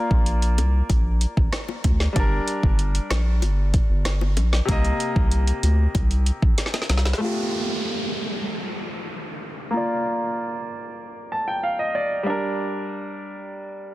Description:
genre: dancehall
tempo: 95 BPM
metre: 4/4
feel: straight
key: unclear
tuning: A4 = 439 Hz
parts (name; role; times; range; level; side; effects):
- bright concert grand piano; accompaniment; 0.0-13.9 s; C3 to A5; -27 LUFS; equal; low-pass filter
- round analog bass; bass; 0.1-7.1 s; G1 to D2; -20 LUFS; equal; none
- afro-pop drum kit; drums; 0.1-7.3 s; hi-hat, kick drum, rim click, snare drum; -22 LUFS; equal; soft clipping on snare
- bongos; percussion; 0.6-7.0 s; none; -34 LUFS; left 7 dB; none
- downlifter; sound effects; 7.2-12.3 s; none; -30 LUFS; right 1 dB; none
room: little or no reverb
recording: dense, heavily limited modern master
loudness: -20 LUFS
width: side -16 dB against mid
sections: 0.0-7.2 A section; 7.2-13.9 B section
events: drum fill 6.6-7.2; filter sweep on grand piano 7.2-13.9; grand piano fill 11.0-12.3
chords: 0.0 Bb; 2.2 Gm; 4.7 Cm7; 7.2 Fadd9; 9.7 Bb; 12.3 Gm

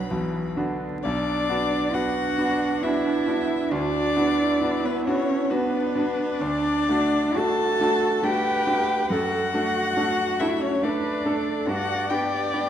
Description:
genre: classical, slow romantic movement for piano quartet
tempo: 68 BPM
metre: 3/4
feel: uneven beats, rubato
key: B minor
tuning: A4 = 441 Hz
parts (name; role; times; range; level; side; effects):
- clear violin; melody; 0.0-12.7 s; B4 to B5; -27 LUFS; left 5 dB; none
- rich cello; second line; 0.0-12.7 s; D3 to A4; -26 LUFS; right 3 dB; none
- bright grand piano; accompaniment; 0.0-12.7 s; B1 to A4; -27 LUFS; equal; none
- warm viola; accompaniment; 0.0-12.7 s; D4 to D5; -29 LUFS; right 1 dB; none
room: moderate concert hall reverb, RT60 1.7 s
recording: dark, warm production, vinyl crackle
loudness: -21 LUFS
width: side -10 dB against mid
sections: 0.0-1.0 A section; 1.0-12.7 B section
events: none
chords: 0.0 Bm; 3.7 Bm/D; 6.4 D; 9.1 D/F#; 11.7 G

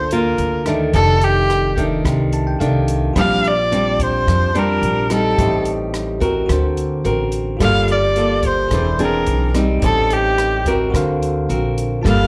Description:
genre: bossa nova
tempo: 108 BPM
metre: 4/4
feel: straight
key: G minor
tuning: A4 = 441 Hz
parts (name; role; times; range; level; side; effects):
- clear erhu; melody; 0.0-12.3 s; G4 to F5; -20 LUFS; equal; plate reverb, slapback echo
- bell-like tine electric piano; accompaniment; 0.0-12.3 s; F4 to A5; -30 LUFS; equal; plate reverb, slapback echo
- nylon-string guitar; accompaniment; 0.0-12.3 s; F2 to Bb4; -22 LUFS; equal; plate reverb, slapback echo
- upright bass; bass; 0.0-12.3 s; E1 to F2; -23 LUFS; equal; none
- compact cocktail drum kit; drums; 0.1-12.2 s; hi-hat, kick drum, rim click; -25 LUFS; equal; none
room: light reverb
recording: live gig heard through the venue's PA, club reverb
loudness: -17 LUFS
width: mono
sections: 0.0-12.3 A section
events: tine electric piano fill 2.1-3.2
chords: 0.0 Gm9 (rootless); 0.9 F13; 3.2 Bb69; 5.4 Am7b5; 6.5 D7b13; 7.6 Gm9; 8.7 E7b13; 9.8 Am7b5; 10.9 D7alt

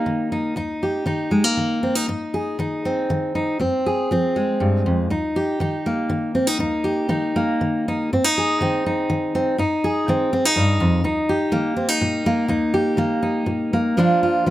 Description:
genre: folk, solo fingerstyle acoustic guitar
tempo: 121 BPM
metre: 3/4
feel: rubato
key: Eb major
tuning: A4 = 440 Hz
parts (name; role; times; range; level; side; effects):
- fingerpicked steel-string acoustic guitar; solo; 0.0-14.5 s; Eb2 to Ab4; -18 LUFS; equal; none
room: light reverb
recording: none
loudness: -18 LUFS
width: side -14 dB against mid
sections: 0.0-8.1 A section; 8.1-14.5 B section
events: none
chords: 0.0 Eb; 2.1 Ab; 3.6 Fm; 5.1 Eb; 8.1 Ab; 11.0 Eb; 14.0 Bb

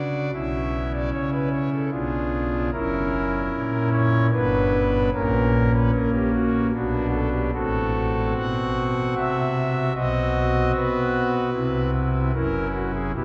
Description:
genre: classical, chorale-style piece for pipe organ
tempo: 75 BPM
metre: 3/4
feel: rubato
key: B minor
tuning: A4 = 439 Hz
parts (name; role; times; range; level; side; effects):
- pipe organ, foundations; solo; 0.0-13.2 s; F#1 to F#5; -23 LUFS; equal; none
room: wet cathedral reverb, RT60 4.8 s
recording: faint mains hum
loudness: -23 LUFS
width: mono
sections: 0.0-13.2 A section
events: none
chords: 0.3 Bm11; 1.9 Fdim7/Cb; 2.7 F#7; 4.3 G; 5.1 A#m6; 6.7 Bm; 7.5 F#dim/A; 10.0 B; 11.5 Cmaj7; 12.3 F#7

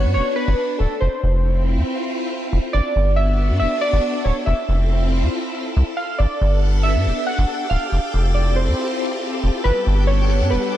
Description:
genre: IDM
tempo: 139 BPM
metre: 4/4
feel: straight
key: unclear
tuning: A4 = 440 Hz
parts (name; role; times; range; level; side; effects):
- warbly lo-fi synth keys; melody; 0.0-10.8 s; A4 to F#5; -24 LUFS; right 1 dB; chorus, ping-pong delay
- soft string machine; sustained chords; 0.0-10.8 s; G3 to F#5; -25 LUFS; equal; ensemble chorus
- deep acid bass; bass; 0.0-10.6 s; D1 to G2; -17 LUFS; equal; none
- twinkling granular texture; texture; 6.9-10.8 s; G4; -31 LUFS; left 4 dB; built-in reverb
room: digital ambience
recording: dark, warm production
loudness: -17 LUFS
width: side -12 dB against mid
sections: 0.0-10.8 A section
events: none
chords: 0.0 Gmaj7; 1.0 Fmaj7; 2.7 Gmaj9; 4.5 Fmaj7; 6.2 Gmaj9; 7.9 Fmaj9; 9.7 Gmaj9

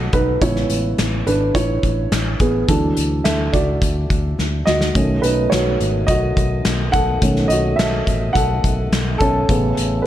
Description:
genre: piano-driven pop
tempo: 106 BPM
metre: 4/4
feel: straight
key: unclear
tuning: A4 = 440 Hz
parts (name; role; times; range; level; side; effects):
- dark baby grand piano; accompaniment; 0.0-10.1 s; C#3 to F#5; -19 LUFS; right 1 dB; none
- fingered electric bass; bass; 0.0-10.0 s; G#1 to D2; -22 LUFS; equal; none
- loose indie drum kit; drums; 0.1-9.9 s; handclaps, hi-hat, kick drum, snare drum; -21 LUFS; equal; none
- tonewheel organ; sustained chords; 5.0-10.1 s; A2 to C#4; -28 LUFS; left 2 dB; overdrive, stopped rotary speaker
room: light reverb, studio reverb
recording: dark, warm production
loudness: -15 LUFS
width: side -12 dB against mid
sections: 0.0-10.1 A section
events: grand piano solo 0.0-10.1; drum fill 4.4-5.0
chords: 0.4 Amaj7; 2.7 Dadd9; 5.0 B7; 9.5 Amaj7

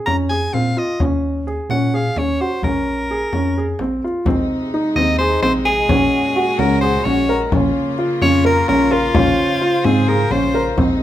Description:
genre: contemporary instrumental, chamber music in an uneven meter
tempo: 258 BPM (eighths)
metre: 7/8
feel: straight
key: Bb minor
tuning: A4 = 440 Hz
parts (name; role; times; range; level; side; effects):
- felt-muted upright piano; arpeggios; 0.0-11.0 s; C4 to Bb4; -18 LUFS; equal; none
- edgy soprano saxophone; melody; 0.1-10.7 s; F4 to Bb5; -20 LUFS; equal; none
- mellow tine electric piano; bass; 0.1-11.0 s; Bb1 to Bb2; -22 LUFS; equal; overdrive, medium stereo tremolo
- frame drum; percussion; 0.1-11.0 s; none; -22 LUFS; left 2 dB; none
- rich chamber string section; sustained chords; 4.3-11.0 s; Bb2 to C5; -24 LUFS; left 3 dB; none
room: light reverb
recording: close, detailed microphones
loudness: -15 LUFS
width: side -12 dB against mid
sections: 0.0-4.3 A section; 4.3-11.0 B section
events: none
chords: 0.0 Bbm9; 1.0 Ebm7; 2.6 Bbm9; 4.3 Ab/Bb; 5.9 Gbadd9/Bb; 7.5 Bbm; 9.1 Dbmaj7/Bb

